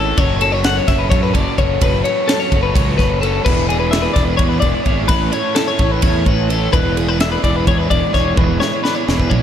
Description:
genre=math rock and midwest emo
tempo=256 BPM (eighths)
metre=7/8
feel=straight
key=unclear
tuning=A4 = 440 Hz
part: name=twelve-string electric guitar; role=arpeggios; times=0.0-9.4 s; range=G#4 to F#5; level=-19 LUFS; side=left 7 dB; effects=slapback echo
part: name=crunchy overdriven guitar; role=riff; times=0.0-9.4 s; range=E3 to D5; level=-20 LUFS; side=right 4 dB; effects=slapback echo
part: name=fuzz fingered electric bass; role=bass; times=0.0-9.4 s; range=E1 to F#2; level=-19 LUFS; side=equal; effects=overdrive
part: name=crisp fusion drum kit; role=drums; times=0.2-9.4 s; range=crash cymbal, kick drum, ride cymbal, snare drum, toms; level=-18 LUFS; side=equal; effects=none
room=light reverb, small room ambience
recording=none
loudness=-13 LUFS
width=side -9 dB against mid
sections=0.0-9.4 A section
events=drum fill 8.4-9.4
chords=0.2 F#m; 3.5 E7; 5.1 A; 6.7 E7

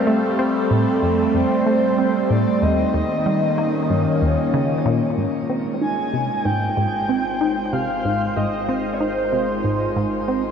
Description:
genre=ambient, sequencer-driven space music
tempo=94 BPM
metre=4/4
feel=straight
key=Ab major from 5.2 s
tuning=A4 = 440 Hz
part: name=breathy flute-like synth lead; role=melody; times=0.0-10.0 s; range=A4 to Ab5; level=-24 LUFS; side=left 1 dB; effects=lush chorus, shimmer reverb, ping-pong delay
part: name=phased analog pad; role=sustained chords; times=0.0-10.5 s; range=Eb3 to C5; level=-21 LUFS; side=right 1 dB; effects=phaser, chorus, shimmer reverb
part: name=tight sequenced synth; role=riff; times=0.1-10.4 s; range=Eb2 to Eb4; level=-23 LUFS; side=equal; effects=chorus, shimmer reverb, ping-pong delay
part: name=round analog bass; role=bass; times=5.2-10.5 s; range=Ab1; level=-43 LUFS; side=left 1 dB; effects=none
room=wet huge ambient reverb, RT60 7.9 s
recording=in a vast, echoing space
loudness=-18 LUFS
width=side -7 dB against mid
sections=0.0-5.2 A section; 5.2-10.5 B section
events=none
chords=0.0 F; 2.6 Eb7; 5.2 Ab6

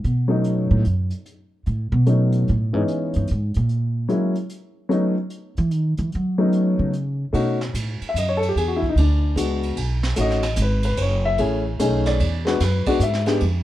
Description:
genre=jazz piano trio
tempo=148 BPM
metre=3/4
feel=swing 65% on 8ths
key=B mixolydian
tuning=A4 = 441 Hz
part: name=upright bass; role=bass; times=0.0-13.6 s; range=F#1 to F#3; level=-21 LUFS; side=right 1 dB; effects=none
part: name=vintage brush drum kit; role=drums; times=0.0-13.5 s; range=hi-hat, kick drum, ride cymbal, snare drum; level=-31 LUFS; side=right 3 dB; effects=none
part: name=dark upright piano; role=melody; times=0.3-13.4 s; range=E3 to E5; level=-22 LUFS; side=left 2 dB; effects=plate reverb
room=light reverb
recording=dark, warm production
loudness=-19 LUFS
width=side -14 dB against mid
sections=0.0-7.3 A section; 7.3-13.6 A section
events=upright bass solo 0.0-7.3; upright piano solo 7.3-13.6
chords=0.0 B9; 2.5 C#m7; 3.7 N.C.; 4.9 B9; 8.6 E9; 9.8 B7; 11.0 F#m7; 11.8 B9; 12.2 E9

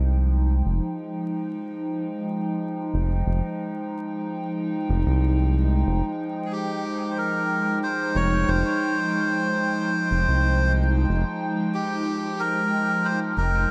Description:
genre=ambient dub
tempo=92 BPM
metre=4/4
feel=straight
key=F minor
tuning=A4 = 440 Hz
part: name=warbly tape-like pad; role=sustained chords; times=0.0-13.7 s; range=F3 to G5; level=-29 LUFS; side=equal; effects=chorus, built-in reverb, phaser
part: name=round analog bass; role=bass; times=0.0-13.7 s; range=F1 to C2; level=-23 LUFS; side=equal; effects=tube saturation
part: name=melodica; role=melody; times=6.5-13.7 s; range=G4 to Db5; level=-27 LUFS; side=equal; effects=dub echo
room=moderate huge ambient reverb, RT60 7.6 s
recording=vinyl crackle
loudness=-24 LUFS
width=mono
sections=0.0-13.7 A section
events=none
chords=0.0 Fm9

